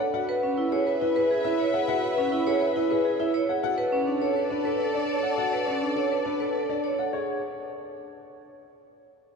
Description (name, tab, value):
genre	classical, minimalist pattern music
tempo	103 BPM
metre	3/4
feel	straight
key	unclear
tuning	A4 = 440 Hz
part	dark grand piano	melody	0.0-7.4 s	G#4 to F#5	-30 LUFS	left 6 dB	none
part	vibraphone with medium hard mallets	arpeggios	0.0-7.4 s	C#4 to C#5	-26 LUFS	right 2 dB	none
part	rich chamber string section	sustained chords	0.1-6.9 s	A4 to E5	-33 LUFS	left 2 dB	none
room	wet cathedral reverb, RT60 4.1 s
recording	dark, warm production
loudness	-23 LUFS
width	side -5 dB against mid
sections	0.0-7.1 A section; 7.1-8.9 B section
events	none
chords	0.1 C#m7; 3.6 Bm7; 7.1 N.C.